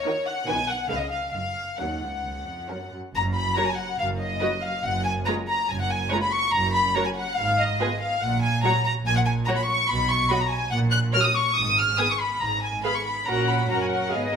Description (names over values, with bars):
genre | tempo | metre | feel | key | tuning
quick classical-period movement for string orchestra | 142 BPM | 4/4 | rubato | F# major | A4 = 440 Hz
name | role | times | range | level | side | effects
warm symphonic violin section | melody | 0.0-14.4 s | C#5 to F#6 | -24 LUFS | left 1 dB | none
warm studio violin section | second line | 0.1-14.4 s | C#4 to G#5 | -31 LUFS | left 2 dB | none
dark symphonic viola section | accompaniment | 0.1-14.4 s | D#3 to G#4 | -31 LUFS | right 3 dB | none
dark chamber double bass section | bass | 0.5-14.4 s | F#1 to C#2 | -30 LUFS | right 3 dB | none
warm symphonic cello section | bass | 0.5-14.4 s | C#2 to C#3 | -31 LUFS | right 2 dB | none
room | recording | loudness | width
wet recital hall reverb, RT60 1.7 s | minimal, uncompressed stereo recording | -22 LUFS | side -7 dB against mid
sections
0.0-3.1 A section; 3.1-14.4 B section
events
none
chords
0.5 B; 0.9 C#7; 1.4 F#; 4.8 C#5/F#; 6.5 F#; 7.4 Fm/Ab; 8.2 F#/A#; 9.9 B5; 10.7 F#/A#; 11.6 G#m; 13.3 F#/A#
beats
0.07 0.49 0.92 | 1.36 1.81 2.25 2.70 | 3.14 3.56 3.99 4.41 | 4.84 5.27 5.69 6.11 | 6.53 6.95 7.38 7.80 | 8.22 8.64 9.06 9.48 | 9.89 10.31 10.72 11.14 | 11.56 11.99 12.41 12.84 | 13.27 13.69 14.11